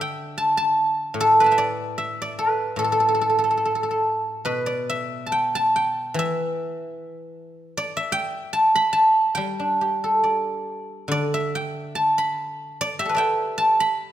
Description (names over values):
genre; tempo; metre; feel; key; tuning
chinese traditional, Chinese solo plucked strings; 72 BPM; 2/4; uneven beats, rubato; A shang mode; A4 = 440 Hz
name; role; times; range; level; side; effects
guzheng; solo; 0.0-14.1 s; A2 to D6; -20 LUFS; equal; none
room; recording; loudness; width
moderate concert hall reverb, RT60 2.2 s; minimal, uncompressed stereo recording; -20 LUFS; side -12 dB against mid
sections
0.0-4.5 A section; 4.5-14.1 B section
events
none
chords
none